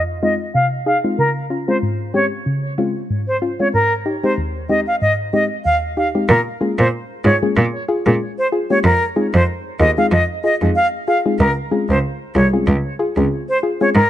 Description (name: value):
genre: dancehall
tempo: 94 BPM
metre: 4/4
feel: swing 56% on 16ths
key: unclear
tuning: A4 = 440 Hz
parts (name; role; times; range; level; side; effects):
- soft round pluck; accompaniment; 0.0-13.9 s; Eb2 to Ab4; -20 LUFS; left 2 dB; chorus, low-pass filter
- bright reedy silver concert flute; melody; 0.2-14.1 s; Bb4 to F5; -18 LUFS; equal; low-pass filter, tape echo
- rich cello; bass; 6.3-14.0 s; C2 to Bb2; -16 LUFS; right 1 dB; none
room: light reverb, studio reverb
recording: nothing above 10.4 kHz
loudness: -15 LUFS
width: side -12 dB against mid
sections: 0.0-6.3 A section; 6.3-14.1 B section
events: none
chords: 0.0 Fm7; 1.2 Dbmaj7; 3.7 Abmaj7; 6.3 Bbm7; 8.8 Fm7; 11.4 Dbmaj7